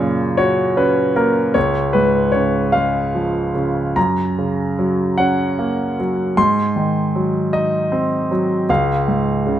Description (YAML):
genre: classical, lyrical solo piano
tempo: 51 BPM (dotted quarters)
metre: 6/8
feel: rubato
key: F# major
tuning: A4 = 441 Hz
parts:
  - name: clear concert grand piano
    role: solo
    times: 0.0-9.6 s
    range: C#2 to B#5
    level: -15 LUFS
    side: equal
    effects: none
room: light reverb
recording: close, detailed microphones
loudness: -15 LUFS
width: side -11 dB against mid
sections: 0.0-9.6 A section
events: none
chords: 0.0 F#; 1.6 C#; 4.0 F#; 6.4 G#7; 8.7 C#